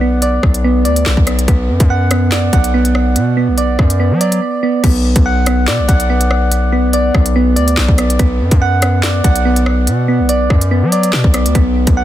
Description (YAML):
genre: hip hop, drill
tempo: 143 BPM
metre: 4/4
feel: half-time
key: B minor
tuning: A4 = 440 Hz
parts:
  - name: soft electric-piano-like synth keys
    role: arpeggios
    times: 0.0-12.0 s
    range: B3 to F#5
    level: -15 LUFS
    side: right 2 dB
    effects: chorus, digital delay
  - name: distorted 808-style bass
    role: bass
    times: 0.0-12.0 s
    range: B1 to F#3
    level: -14 LUFS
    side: equal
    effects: distortion
  - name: drill drum kit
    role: drums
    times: 0.2-12.0 s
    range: crash cymbal, handclaps, hi-hat, kick drum, rim click, snare drum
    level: -14 LUFS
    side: equal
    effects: none
room: little or no reverb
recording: dense, heavily limited modern master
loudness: -10 LUFS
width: side -12 dB against mid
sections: 0.0-4.8 A section; 4.8-12.0 B section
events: break 4.4-4.8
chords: 0.0 Bm